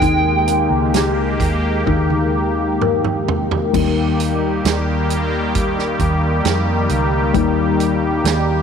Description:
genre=pop ballad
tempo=66 BPM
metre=4/4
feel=straight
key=unclear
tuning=A4 = 440 Hz
part: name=lead guitar through a small cranked amp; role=melody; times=0.0-2.8 s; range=G5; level=-21 LUFS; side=right 5 dB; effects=overdrive, slapback echo
part: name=dark upright piano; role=accompaniment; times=0.0-8.6 s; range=Eb3 to Bb4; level=-22 LUFS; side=left 11 dB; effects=none
part: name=sweeping resonant pad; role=sustained chords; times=0.0-8.6 s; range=Eb3 to G4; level=-19 LUFS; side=equal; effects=chorus
part: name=vintage muted fingered electric bass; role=bass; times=0.0-8.6 s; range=Db2 to F2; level=-21 LUFS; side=right 1 dB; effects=none
part: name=natural country drum kit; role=drums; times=0.0-8.5 s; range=crash cymbal, hi-hat, kick drum, snare drum, toms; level=-22 LUFS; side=right 4 dB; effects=none
room=light reverb, studio ambience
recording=1960s-style stereo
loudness=-15 LUFS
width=side -7 dB against mid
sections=0.0-3.7 A section; 3.7-8.6 B section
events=drum fill 1.9-3.7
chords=0.0 Eb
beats=| 0.03 0.94 1.88 2.82 | 3.75 4.66 5.55 6.45 | 7.34 8.25

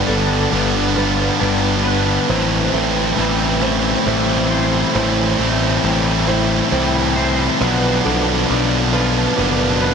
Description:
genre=post-rock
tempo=45 BPM (dotted quarters)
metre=6/8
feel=straight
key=A minor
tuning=A4 = 440 Hz
part: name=felt-muted upright piano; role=arpeggios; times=0.0-9.9 s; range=A4 to C5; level=-25 LUFS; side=right 4 dB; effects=tape echo
part: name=twangy electric guitar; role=arpeggios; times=0.0-9.9 s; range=A2 to C5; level=-24 LUFS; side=left 1 dB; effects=ensemble chorus, tape echo
part: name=thick fuzz guitar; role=riff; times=0.0-9.9 s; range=G2 to E4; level=-20 LUFS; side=left 8 dB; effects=distortion
part: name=tight distorted guitar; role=riff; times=0.0-9.9 s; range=G2 to E4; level=-20 LUFS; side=right 9 dB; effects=distortion
part: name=fuzz picked electric bass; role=bass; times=0.1-9.9 s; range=F#1 to C2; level=-21 LUFS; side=equal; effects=overdrive
room=wet huge ambient reverb, RT60 7.8 s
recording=dreamy mix soaked in reverb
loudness=-14 LUFS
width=side -6 dB against mid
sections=0.0-9.9 A section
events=none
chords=0.0 G7; 2.3 Am7; 7.6 Bdim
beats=0.96 | 2.29 3.62 | 4.95 6.28 | 7.60 8.93

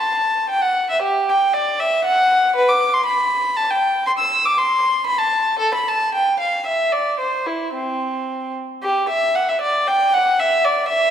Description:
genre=classical, baroque-style suite movement for unaccompanied violin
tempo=107-122 BPM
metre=3/4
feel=rubato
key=C major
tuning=A4 = 440 Hz
part: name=warm violin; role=solo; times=0.0-11.1 s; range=C4 to E6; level=-16 LUFS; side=equal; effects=none
room=wet recital hall reverb, RT60 1.7 s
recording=recorded in a church or concert hall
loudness=-16 LUFS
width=side -9 dB against mid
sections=0.0-8.8 A section; 8.8-11.1 A section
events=none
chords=none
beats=0.50 | 1.03 1.55 2.04 | 2.55 3.06 3.55 | 4.05 4.56 5.07 | 5.59 6.13 6.65 | 7.19 7.74 8.27 | 8.82 9.35 9.86 | 10.38 10.88

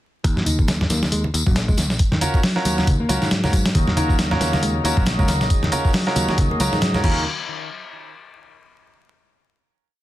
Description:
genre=breakbeat, breaks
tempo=137 BPM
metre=4/4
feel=swing 57% on 16ths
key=Eb minor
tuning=A4 = 440 Hz
part: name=picked electric bass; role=riff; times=0.2-7.2 s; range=Db3 to Eb4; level=-25 LUFS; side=equal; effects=ping-pong delay
part: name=picked electric bass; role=bass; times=0.2-7.2 s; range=Bb1 to Ab2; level=-24 LUFS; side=equal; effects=none
part: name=dusty soul sampler-style drum kit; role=drums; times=0.2-7.1 s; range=crash cymbal, hi-hat, kick drum, snare drum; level=-20 LUFS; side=equal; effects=none
part: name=tambourine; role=drums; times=0.2-7.0 s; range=none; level=-30 LUFS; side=left 1 dB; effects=none
part: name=congas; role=percussion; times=0.4-7.1 s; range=none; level=-28 LUFS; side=right 1 dB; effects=none
part: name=bright baby grand piano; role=stabs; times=2.2-7.2 s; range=Db4 to Bb4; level=-25 LUFS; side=right 2 dB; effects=vintage 12-bit sampler grit, ping-pong delay
part: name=overdriven tonewheel organ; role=sustained chords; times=3.8-7.2 s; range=Db3 to Eb4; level=-27 LUFS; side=equal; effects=slow rotary speaker, sidechain pumping
room=moderate studio reverb, RT60 0.6 s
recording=dense, heavily limited modern master, vinyl crackle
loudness=-17 LUFS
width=side -14 dB against mid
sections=0.2-7.3 groove; 7.3-9.0 final hit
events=none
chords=0.2 Ebm7; 7.3 N.C.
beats=| 0.25 0.69 1.12 1.56 | 2.00 2.44 2.88 3.31 | 3.75 4.19 4.63 5.07 | 5.50 5.94 6.38 6.82

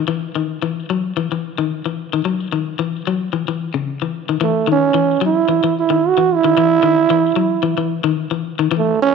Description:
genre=afrobeat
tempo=111 BPM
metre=4/4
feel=swing 55% on 16ths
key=F# dorian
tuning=A4 = 441 Hz
part: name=electric guitar at the edge of break-up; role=arpeggios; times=0.0-8.9 s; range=C#3 to F#3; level=-19 LUFS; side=left 10 dB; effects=none
part: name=trombone with bucket mute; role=melody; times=4.4-9.1 s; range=A3 to F#4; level=-14 LUFS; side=right 8 dB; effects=none
room=moderate echo chamber reverb, RT60 1.7 s, small room ambience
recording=1960s-style stereo with parts hard left and right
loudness=-15 LUFS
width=side -5 dB against mid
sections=0.0-4.4 A section; 4.4-9.1 B section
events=none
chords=0.0 F#7(no3); 4.4 N.C.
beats=| 0.09 0.63 1.17 1.71 | 2.25 2.79 3.33 3.87 | 4.41 4.95 5.49 6.03 | 6.57 7.10 7.64 8.18 | 8.72

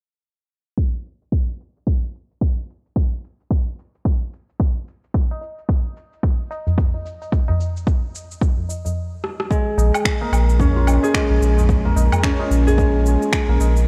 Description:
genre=organic downtempo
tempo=110 BPM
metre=4/4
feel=swing 59% on 16ths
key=Bb minor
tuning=A4 = 444 Hz
part: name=electronic cabasa, rim click, woodblock and finger snaps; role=drums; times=0.8-13.9 s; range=none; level=-29 LUFS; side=equal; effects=overdrive
part: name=electronic kick drum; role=drums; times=0.8-13.5 s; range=none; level=-21 LUFS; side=equal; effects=overdrive
part: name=tabla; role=percussion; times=5.3-13.8 s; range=none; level=-28 LUFS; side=equal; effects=none
part: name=concert harp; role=arpeggios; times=9.5-13.9 s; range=Ab3 to Ab4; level=-23 LUFS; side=equal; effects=analog delay
part: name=warm sub bass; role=bass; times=9.8-13.9 s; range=Bb1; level=-18 LUFS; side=equal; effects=sidechain pumping
room=light reverb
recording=low-pass filter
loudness=-20 LUFS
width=mono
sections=0.8-9.5 A section; 9.5-13.9 B section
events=filter sweep 0.8-9.5; stop 9.0-9.5; drum fill 9.2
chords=0.8 N.C.; 9.5 Bbm7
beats=| 0.78 1.32 1.87 2.42 | 2.96 3.51 4.05 4.60 | 5.14 5.69 6.23 6.78 | 7.32 7.87 8.41 8.96 | 9.51 10.05 10.60 11.14 | 11.69 12.23 12.78 13.32 | 13.87

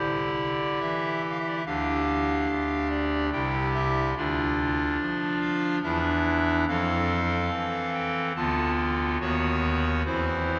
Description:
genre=classical, chorale-style piece for pipe organ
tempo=71 BPM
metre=3/4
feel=rubato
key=unclear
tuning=A4 = 440 Hz
part: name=pipe organ, clarinet reed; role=solo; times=0.0-10.6 s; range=C2 to A5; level=-26 LUFS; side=equal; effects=none
room=wet church reverb, RT60 3.5 s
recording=none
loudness=-26 LUFS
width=mono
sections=0.0-10.6 A section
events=none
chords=0.0 C (rootless); 1.7 G5/D; 3.3 C; 4.2 Dm; 5.8 Dsus2/E; 6.7 F; 8.4 Bm7b5/D; 9.2 B/D#; 10.1 C/E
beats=0.82 | 1.66 2.50 3.33 | 4.17 5.00 5.83 | 6.67 7.52 8.36 | 9.20 10.05

